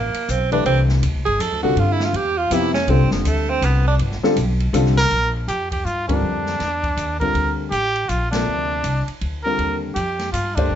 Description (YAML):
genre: modal jazz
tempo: 161 BPM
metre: 3/4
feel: swing 63% on 8ths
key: G mixolydian, Bb major from 5.1 s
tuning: A4 = 441 Hz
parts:
  - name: edgy tenor saxophone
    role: second line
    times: 0.0-4.0 s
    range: F3 to A4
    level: -21 LUFS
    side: right 4 dB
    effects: none
  - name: upright bass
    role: bass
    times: 0.0-10.8 s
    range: F1 to G2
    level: -21 LUFS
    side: equal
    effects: none
  - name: open jazz drum kit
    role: drums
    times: 0.1-10.6 s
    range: hi-hat, kick drum, ride cymbal, snare drum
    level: -29 LUFS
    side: equal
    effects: none
  - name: dark baby grand piano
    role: accompaniment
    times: 0.5-10.8 s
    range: C3 to C5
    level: -22 LUFS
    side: left 3 dB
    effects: none
  - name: clear trumpet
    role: melody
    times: 5.0-10.8 s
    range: D4 to Bb4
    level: -22 LUFS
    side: right 1 dB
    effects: none
room: moderate studio reverb, RT60 0.7 s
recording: nothing above 7.8 kHz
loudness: -17 LUFS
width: side -10 dB against mid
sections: 0.0-5.1 A section; 5.1-10.8 B section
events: tenor saxophone solo 0.0-5.1; band accent 6.0, 8.3, 10.5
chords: 0.0 G13sus4; 5.1 Bbmaj9; 9.6 Ebmaj9